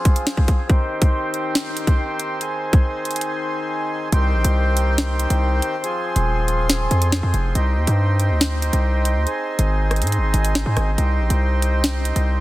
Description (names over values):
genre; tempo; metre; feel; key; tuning
hip hop, drill; 140 BPM; 4/4; half-time; C minor; A4 = 440 Hz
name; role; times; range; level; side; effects
accordion; sustained chords; 0.0-12.4 s; Eb3 to C5; -23 LUFS; equal; low-pass filter
drill drum kit; drums; 0.1-12.3 s; hi-hat, kick drum, rim click, snare drum; -20 LUFS; equal; none
hard-hitting 808-style bass; bass; 4.1-12.4 s; Eb1 to Ab2; -18 LUFS; equal; none
room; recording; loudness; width
light reverb; dense, heavily limited modern master; -17 LUFS; side -17 dB against mid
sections
0.0-4.1 A section; 4.1-12.4 B section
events
break 3.3-4.1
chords
0.0 Fm; 0.7 Cm; 2.4 Ab; 4.1 Cm; 5.8 Fm; 7.6 Cm; 9.3 Ab; 11.0 Cm